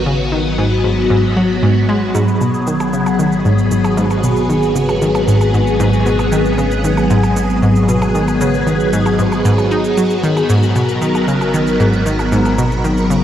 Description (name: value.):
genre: ambient, sequencer-driven space music.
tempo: 115 BPM.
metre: 4/4.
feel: straight.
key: G# minor.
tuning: A4 = 440 Hz.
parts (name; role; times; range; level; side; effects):
phased string machine; sustained chords; 0.0-13.2 s; F#3 to A#4; -15 LUFS; left 1 dB; ensemble chorus, phaser.
analog drone; bass; 0.0-13.2 s; G#1; -23 LUFS; equal; chorus.
analog pluck; riff; 0.1-13.2 s; G#2 to D#4; -16 LUFS; equal; chorus, cassette tape, tape echo.
shaker and percussion blips; percussion; 2.1-13.2 s; none; -29 LUFS; right 2 dB; tape echo.
room: moderate plate reverb, RT60 2.4 s.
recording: dreamy mix soaked in reverb.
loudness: -12 LUFS.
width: side -10 dB against mid.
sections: 0.0-13.2 A section.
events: none.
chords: 0.0 G#m7.